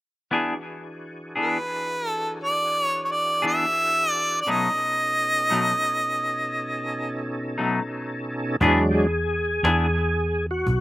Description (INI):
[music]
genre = slow blues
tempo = 58 BPM (dotted quarters)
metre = 12/8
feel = straight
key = E major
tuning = A4 = 440 Hz
[part]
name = clean electric guitar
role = accompaniment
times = 0.3-9.9 s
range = B2 to G#4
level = -24 LUFS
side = left 2 dB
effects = tremolo, slapback echo
[part]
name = overdriven tonewheel organ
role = sustained chords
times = 0.3-10.8 s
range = B2 to A4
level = -28 LUFS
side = equal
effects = chorus vibrato, slow rotary speaker
[part]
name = bright harmonica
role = melody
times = 1.4-7.2 s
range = B4 to E5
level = -22 LUFS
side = equal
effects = overdrive, slapback echo
[part]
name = vintage muted fingered electric bass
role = bass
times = 8.6-10.8 s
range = B1 to E2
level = -24 LUFS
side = equal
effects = none
[part]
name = cajon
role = drums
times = 8.6-10.8 s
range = none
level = -28 LUFS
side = equal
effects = none
[sound]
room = little or no reverb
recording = recorded outdoors, with no room sound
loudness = -21 LUFS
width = side -16 dB against mid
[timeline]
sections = 0.3-8.6 A section; 8.6-10.8 B section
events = tonewheel organ solo 8.6-10.8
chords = 0.3 E7; 4.5 B7; 8.6 E7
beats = | 0.32 1.36 2.40 3.44 | 4.47 5.51 6.54 7.58 | 8.61 9.64 10.67